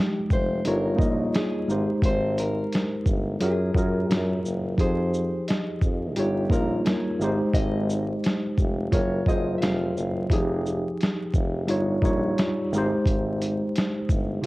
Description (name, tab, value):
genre	lo-fi hip hop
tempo	87 BPM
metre	4/4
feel	swing 64% on 16ths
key	unclear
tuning	A4 = 440 Hz
part	nylon-string guitar	melody	0.0-10.1 s	G4 to F5	-32 LUFS	left 1 dB	low-pass filter
part	tine electric piano	accompaniment	0.0-14.5 s	C3 to Eb5	-26 LUFS	equal	overdrive, fast stereo tremolo, low-pass filter, cassette tape
part	warm tuba	bass	0.2-14.5 s	F1 to Gb2	-29 LUFS	equal	none
part	dusty soul sampler-style drum kit	drums	0.3-14.5 s	hi-hat, kick drum, shaker, snare drum	-25 LUFS	equal	cassette tape
room	light reverb, digital ambience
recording	home recording on cassette, vinyl crackle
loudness	-22 LUFS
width	side -20 dB against mid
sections	0.0-14.5 A section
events	none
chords	0.0 Fm9; 0.6 Eb7/G; 1.7 Abmaj7; 3.4 Gbmaj9; 4.8 Fm9; 6.2 Eb7/G; 7.2 Abmaj7; 8.9 Gbmaj9; 10.3 Fm9; 11.7 Eb7/G; 12.7 Abmaj7